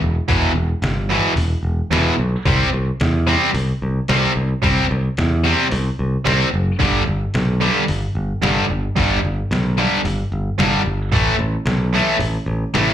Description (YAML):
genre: hard rock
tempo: 111 BPM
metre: 4/4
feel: straight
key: unclear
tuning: A4 = 441 Hz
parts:
  - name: modern bright picked electric bass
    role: bass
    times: 0.0-12.9 s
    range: E1 to E2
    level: -19 LUFS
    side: equal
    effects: none
  - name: distorted electric guitar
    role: riff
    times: 0.3-12.9 s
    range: E2 to C4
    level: -21 LUFS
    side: left 10 dB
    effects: overdrive, slapback echo
  - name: distorted electric guitar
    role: riff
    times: 0.3-12.9 s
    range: E2 to C4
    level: -22 LUFS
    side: right 10 dB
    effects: overdrive, slapback echo
  - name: trip hop sampler-style drum kit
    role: drums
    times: 0.3-12.9 s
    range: hi-hat, kick drum, snare drum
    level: -23 LUFS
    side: equal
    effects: none
room: little or no reverb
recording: live gig heard through the venue's PA, club ambience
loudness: -16 LUFS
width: side -10 dB against mid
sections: 0.0-12.9 A section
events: none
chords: 0.0 Em; 2.5 C; 6.8 G; 11.1 Asus2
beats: | 0.29 0.83 1.37 1.91 | 2.46 3.00 3.54 4.08 | 4.62 5.17 5.71 6.25 | 6.79 7.33 7.88 8.42 | 8.96 9.50 10.04 10.58 | 11.12 11.66 12.20 12.74